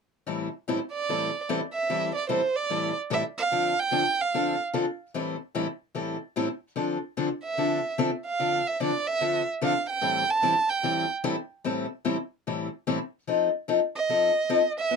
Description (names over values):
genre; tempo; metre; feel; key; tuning
jazz; 148 BPM; 4/4; swing 62% on 8ths; A minor; A4 = 441 Hz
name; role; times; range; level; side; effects
picked steel-string acoustic guitar; accompaniment; 0.3-15.0 s; A2 to A4; -26 LUFS; left 4 dB; none
warm violin; melody; 0.9-4.6, 7.4-11.1, 14.0-15.0 s; C5 to A5; -25 LUFS; right 4 dB; none
room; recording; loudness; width
light reverb; dark, warm production; -25 LUFS; side -5 dB against mid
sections
0.3-15.0 A section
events
none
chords
0.3 Am7; 3.5 Dm7; 5.1 Am7; 6.8 Dm9; 10.0 Am7; 13.3 F7